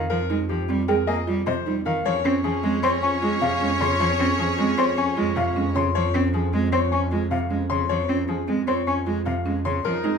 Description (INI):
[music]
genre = classical, minimalist pattern music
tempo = 154 BPM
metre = 5/4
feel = straight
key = unclear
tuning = A4 = 440 Hz
[part]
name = bright grand piano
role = melody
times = 0.0-10.1 s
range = G4 to C6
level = -28 LUFS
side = left 8 dB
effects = none
[part]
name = rich cello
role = accompaniment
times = 0.0-10.2 s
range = C3 to Db4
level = -27 LUFS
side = equal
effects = none
[part]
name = buzzing marimba with soft mallets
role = arpeggios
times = 0.0-10.2 s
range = C4 to Db5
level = -27 LUFS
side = right 6 dB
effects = none
[part]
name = rich chamber double bass section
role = bass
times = 0.0-10.2 s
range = F2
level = -28 LUFS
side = right 1 dB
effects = none
[part]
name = mellow hollow concert flute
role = arpeggios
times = 0.9-9.3 s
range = Eb5 to Db6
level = -28 LUFS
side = left 4 dB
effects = none
[part]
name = rich chamber violin section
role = sustained chords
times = 2.0-5.7, 9.8-10.2 s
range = Ab4 to Eb5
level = -30 LUFS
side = left 3 dB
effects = none
[part]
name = warm oboe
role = second line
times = 2.1-5.7, 9.8-10.2 s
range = Db4 to Eb4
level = -29 LUFS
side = right 4 dB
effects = none
[sound]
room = moderate large studio reverb, RT60 0.9 s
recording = minimal, uncompressed stereo recording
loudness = -20 LUFS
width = side -6 dB against mid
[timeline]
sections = 0.0-10.2 A section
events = none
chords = 0.0 Fm9; 2.1 Db/F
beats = | 0.10 0.49 0.88 1.27 1.66 | 2.05 2.44 2.83 3.22 3.61 | 4.00 4.39 4.78 5.17 5.56 | 5.95 6.34 6.73 7.12 7.51 | 7.90 8.29 8.68 9.07 9.46 | 9.85